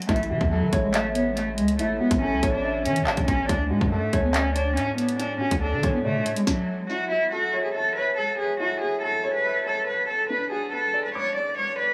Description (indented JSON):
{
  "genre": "hip hop, drill",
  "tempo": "141 BPM",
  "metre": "4/4",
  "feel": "half-time",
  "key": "F# minor",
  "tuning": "A4 = 436 Hz",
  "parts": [
    { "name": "dark cello", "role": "melody", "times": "0.0-11.9 s", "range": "E3 to D5", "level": "-27 LUFS", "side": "equal", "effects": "tape echo" },
    { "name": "drill drum kit", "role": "drums", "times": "0.0-6.6 s", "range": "handclaps, hi-hat, kick drum, snare drum", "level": "-30 LUFS", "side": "equal", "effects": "tape echo" },
    { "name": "dark concert grand piano", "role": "accompaniment", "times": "0.1-11.9 s", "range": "D4 to D6", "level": "-32 LUFS", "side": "equal", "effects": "tape echo" },
    { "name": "long sustained 808-style bass", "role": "bass", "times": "0.1-6.3 s", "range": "A1 to E3", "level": "-31 LUFS", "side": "equal", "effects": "none" }
  ],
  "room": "light reverb",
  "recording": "echo-heavy mix, small room ambience",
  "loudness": "-24 LUFS",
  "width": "mono",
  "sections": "0.0-6.9 A section; 6.9-11.9 B section",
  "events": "none",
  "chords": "0.1 A6; 3.5 Dmaj7; 6.9 F#m7; 10.3 Bm",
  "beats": "| 0.09 0.51 0.94 1.36 | 1.79 2.22 2.64 3.07 | 3.49 3.92 4.34 4.77 | 5.20 5.62 6.05 6.47 | 6.90 7.32 7.75 8.17 | 8.60 9.03 9.45 9.88 | 10.30 10.73 11.15 11.58"
}